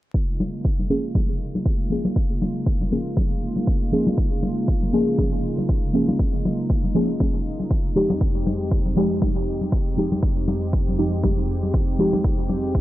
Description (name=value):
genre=deep house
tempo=119 BPM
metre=4/4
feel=swing 56% on 16ths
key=unclear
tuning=A4 = 439 Hz
part: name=warm analog pad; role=sustained chords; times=0.1-12.8 s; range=F2 to G4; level=-27 LUFS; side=right 1 dB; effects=chorus, vintage 12-bit sampler grit, sidechain pumping
part: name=electronic hi-hat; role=drums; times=0.1-12.8 s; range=none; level=-65 LUFS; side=right 1 dB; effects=none
part: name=electronic kick drum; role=drums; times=0.1-12.8 s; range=none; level=-22 LUFS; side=equal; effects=overdrive
part: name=congas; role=percussion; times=0.4-12.6 s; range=none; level=-28 LUFS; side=left 2 dB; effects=none
part: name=deep mellow chord stab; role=stabs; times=0.9-12.2 s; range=F3 to Ab4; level=-24 LUFS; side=equal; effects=chorus, cassette tape, sidechain pumping, tape echo
room=light reverb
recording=dry, gritty hardware recording, vinyl crackle, low-pass filter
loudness=-20 LUFS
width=side -15 dB against mid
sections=0.1-12.8 A section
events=filter sweep on synth stab 0.1-12.8; filter sweep 0.1-12.8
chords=0.1 Db6; 8.0 Fm9